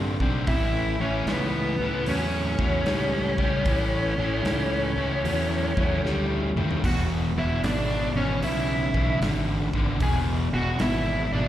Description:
blues rock power trio and southern rock; 76 BPM; 4/4; swing 66% on 8ths; A mixolydian; A4 = 440 Hz
percussive tonewheel organ; sustained chords; 0.0-11.5 s; G#3 to G5; -39 LUFS; right 3 dB
overdriven electric guitar; riff; 0.0-11.5 s; E2 to C4; -27 LUFS; left 1 dB; slapback echo
fuzz fingered electric bass; bass; 0.0-11.5 s; E1 to G2; -28 LUFS; equal; overdrive
big rock drum kit; drums; 0.2-11.0 s; hi-hat, kick drum, snare drum, splash cymbal, toms; -30 LUFS; equal
octave-fuzz lead guitar; melody; 0.5-11.5 s; B3 to G#4; -28 LUFS; left 1 dB; distortion, slapback echo, tape echo
small room ambience; live gig heard through the venue's PA, recital hall reverb; -22 LUFS; side -12 dB against mid
0.0-11.5 A section
drum fill 6.0-6.8
0.5 A7; 6.8 E7
| 0.48 1.28 2.07 2.87 | 3.66 4.45 5.25 6.04 | 6.83 7.63 8.42 9.21 | 10.00 10.80

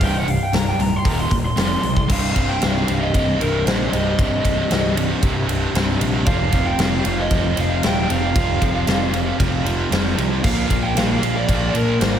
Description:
hard rock; 115 BPM; 4/4; straight; C minor; A4 = 438 Hz
lead guitar through a small cranked amp; melody; 0.0-12.2 s; Bb4 to C6; -24 LUFS; right 1 dB; overdrive, slapback echo, analog delay
overdriven electric guitar; riff; 0.0-12.2 s; C2 to Bb3; -21 LUFS; equal; harmonic tremolo
fuzz picked electric bass; bass; 0.0-12.2 s; C1 to C2; -24 LUFS; equal; overdrive
big rock drum kit; drums; 0.0-12.1 s; crash cymbal, hi-hat, kick drum, ride cymbal, snare drum; -21 LUFS; equal
light reverb, small room ambience; -16 LUFS; side -9 dB against mid
0.0-2.1 A section; 2.1-12.2 B section
lead electric guitar solo 0.0-2.1
0.0 C5; 1.1 Eb5; 1.6 F5; 2.1 Cm; 6.3 F5; 10.4 Bb
| 0.01 0.54 1.06 1.58 | 2.10 2.62 3.14 3.66 | 4.18 4.70 5.22 5.75 | 6.27 6.79 7.31 7.83 | 8.36 8.88 9.40 9.92 | 10.45 10.97 11.49 12.01

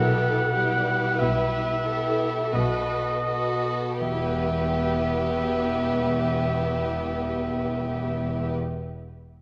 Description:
classical; 39-51 BPM; 3/4; rubato; E minor; A4 = 436 Hz
rich chamber violin section; melody; 0.0-8.6 s; G4 to B4; -36 LUFS; equal
clear oboe; second line; 0.0-8.6 s; D#5 to F#5; -30 LUFS; equal
rich chamber violin section; second line; 0.0-8.6 s; B3 to G4; -34 LUFS; equal
rich chamber viola section; accompaniment; 0.0-8.6 s; B3 to B4; -34 LUFS; equal
concert harp; arpeggios; 0.0-8.9 s; B2 to G5; -34 LUFS; equal
rich chamber double bass section; bass; 0.0-8.5 s; E1 to B1; -34 LUFS; equal
rich symphonic cello section; bass; 0.0-8.6 s; E2 to B2; -34 LUFS; equal
wet scoring stage reverb, RT60 1.6 s; -25 LUFS; mono
0.0-4.0 A section; 4.0-8.2 B section
slowing down 0.0-4.0
0.0 Em/B; 2.5 B7; 4.0 Em
1.18 2.53 | 4.01 5.45 6.84

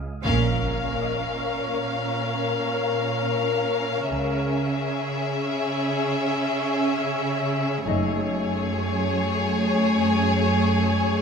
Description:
cinematic, suspense film score; free time; A4 = 440 Hz
wind-like tuned noise texture; sustained chords; 0.0-11.2 s; G#4 to Ab5; -29 LUFS; left 1 dB; built-in reverb
concert harp; texture; 0.0-11.2 s; Eb4 to Eb6; -33 LUFS; left 7 dB
rich chamber violin section; melody; 0.2-11.2 s; Db5 to F5; -29 LUFS; left 7 dB
rich studio viola section; accompaniment; 0.2-11.2 s; A3 to Db4; -28 LUFS; right 1 dB
rich chamber double bass section; bass; 0.2-8.6 s; Gb1 to Db2; -29 LUFS; right 4 dB
rich studio cello section; bass; 0.2-11.2 s; Gb2 to Db3; -28 LUFS; right 3 dB
impact; sound effects; 0.2-4.1 s; -33 LUFS; equal
rich studio violin section; second line; 0.3-11.2 s; Ab4 to Bb4; -30 LUFS; left 5 dB
moderate scoring stage reverb, RT60 1.7 s; -22 LUFS; side -6 dB against mid
0.2-11.2 A section
band accent 0.2-1.0; impact 0.2-4.1
0.2 Bbm; 4.1 Dbm; 7.9 Gbmadd9
free time

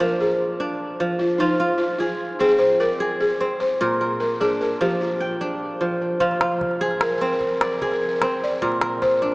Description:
west african traditional, West African string and xylophone music; 100 BPM (dotted quarters); 12/8; straight; F dorian; A4 = 439 Hz
balafon; melody; 0.0-9.3 s; Eb4 to D5; -22 LUFS; left 1 dB
kora; arpeggios; 0.0-9.3 s; Bb2 to G5; -22 LUFS; right 1 dB; tape echo
calabash; percussion; 6.2-9.3 s; -28 LUFS; equal
wet cathedral reverb, RT60 5.6 s; in a vast, echoing space, small speaker sound; -19 LUFS; side -24 dB against mid
0.0-9.3 A section
0.0 Bb; 1.4 Fm; 3.8 Bb; 6.2 Fm; 8.6 Bb
0.20 0.80 | 1.40 2.00 2.60 3.20 | 3.80 4.40 5.00 5.61 | 6.21 6.81 7.41 8.02 | 8.62 9.22

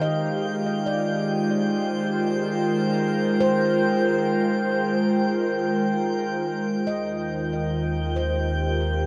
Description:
ambient; 70 BPM; 4/4; straight; A4 = 440 Hz
airy breathy pad; sustained chords; 0.0-9.1 s; Eb3 to F5; -26 LUFS; equal; chorus, shimmer reverb
handpan; arpeggios; 0.0-9.1 s; F4 to Eb5; -32 LUFS; equal; tape echo, shimmer reverb
bowed-like drone; drone; 0.0-7.0 s; Eb3; -37 LUFS; equal; built-in reverb
drifting glass-harmonics texture; texture; 0.0-9.1 s; G5 to G6; -33 LUFS; equal; chorus, built-in reverb, shimmer reverb
warm sub bass; bass; 6.9-9.1 s; Eb2; -30 LUFS; equal
wet huge ambient reverb, RT60 8.4 s; dark, warm production; -24 LUFS; mono
0.0-6.9 A section; 6.9-9.1 B section
0.0 Ab69; 6.9 Ebadd9
| 0.02 0.87 1.71 2.56 | 3.42 4.27 5.13 6.01 | 6.88 7.74 8.60

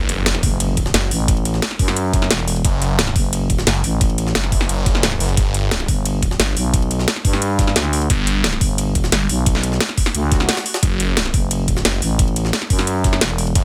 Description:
dark technical drum and bass; 176 BPM; 4/4; straight; F# phrygian; A4 = 441 Hz
phased detuned saw bass; bass; 0.0-13.6 s; F#1 to G1; -22 LUFS; equal; phaser, tube saturation, sidechain pumping
impact and swell; sound effects; 0.0-1.3, 10.3-10.8 s; -32 LUFS; equal
drum and bass drum kit; drums; 0.1-13.6 s; hi-hat, snare drum; -22 LUFS; equal; soft clipping on snare
jungle sampler-style drum kit; drums; 0.1-13.6 s; ride cymbal, snare drum; -30 LUFS; equal; high-pass filter on cymbals, high-pass filter on snare
growling FM bass; bass; 0.4-13.5 s; E1 to G2; -22 LUFS; equal
electronic kick drum; drums; 0.4-13.6 s; -20 LUFS; equal
little or no reverb; dense, heavily limited modern master; -18 LUFS; mono
0.0-13.6 A section
impact 0.0-1.3; swell 10.3-10.8
0.0 F#m; 5.4 G; 10.8 F#m
0.26 0.60 0.94 | 1.28 1.62 1.97 2.31 | 2.65 2.99 3.33 3.67 | 4.01 4.35 4.69 5.03 | 5.37 5.71 6.06 6.40 | 6.74 7.08 7.42 7.76 | 8.10 8.44 8.78 9.12 | 9.46 9.81 10.15 10.49 | 10.83 11.17 11.51 11.85 | 12.19 12.53 12.87 13.21 | 13.56

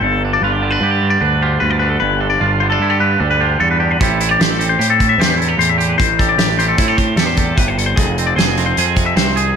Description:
math rock and midwest emo; 151 BPM; 5/4; straight; A4 = 443 Hz
twangy electric guitar; accompaniment; 0.0-9.6 s; F2 to Ab4; -19 LUFS; right 8 dB
twangy electric guitar; arpeggios; 0.0-9.6 s; G4 to E5; -17 LUFS; left 4 dB; phaser, slapback echo
fuzz picked electric bass; bass; 0.0-9.5 s; F1 to A2; -18 LUFS; equal; overdrive
loose indie drum kit; drums; 4.0-9.5 s; hi-hat, kick drum, snare drum; -17 LUFS; equal
moderate lush hall reverb, RT60 2.0 s, small room ambience; big arena sound; -12 LUFS; side -7 dB against mid
0.0-9.6 A section
0.0 G9; 4.0 Am7; 8.0 Fm
| 0.01 0.41 0.81 1.21 1.61 | 2.01 2.41 2.81 3.21 3.60 | 4.00 4.40 4.80 5.20 5.59 | 5.99 6.39 6.79 7.18 7.58 | 7.98 8.38 8.77 9.17

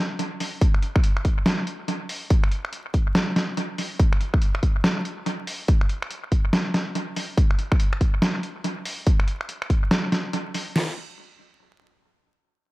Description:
dubstep; 142 BPM; 4/4; swing 62% on 16ths, half-time
trip hop sampler-style drum kit; drums; 0.2-10.6 s; finger snaps, hi-hat, snare drum; -26 LUFS; equal; analog delay
dubstep drum kit; drums; 0.6-10.9 s; crash cymbal, kick drum, snare drum; -20 LUFS; equal
light reverb, digital ambience; echo-heavy mix, vinyl crackle; -21 LUFS; side -19 dB against mid
0.0-10.8 A section; 10.8-12.4 B section
0.19 | 0.61 1.04 1.46 1.88 | 2.30 2.73 3.15 3.57 | 3.99 4.42 4.84 5.26 | 5.68 6.11 6.53 6.95 | 7.38 7.80 8.22 8.64 | 9.06 9.49 9.91 10.33 | 10.76

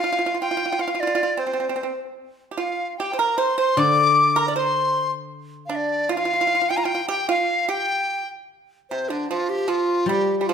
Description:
chinese traditional, Chinese chamber ensemble; 76 BPM; 2/4; rubato; G yu mode; A4 = 440 Hz
hollow large dizi; melody; 0.0-10.5 s; D4 to D6; -21 LUFS; left 2 dB
pipa; second line; 0.0-10.5 s; C3 to D5; -25 LUFS; right 5 dB
guzheng; accompaniment; 3.8-6.1, 10.1-10.5 s; D3 to G3; -26 LUFS; left 3 dB
wet recital hall reverb, RT60 1.4 s; minimal, uncompressed stereo recording; -19 LUFS; side -7 dB against mid
0.0-8.5 A section; 8.5-10.5 B section
| 0.60 1.39 | 2.19 3.00 | 3.79 4.57 | 5.34 6.11 | 6.89 7.67 | 8.47 9.27 | 10.06

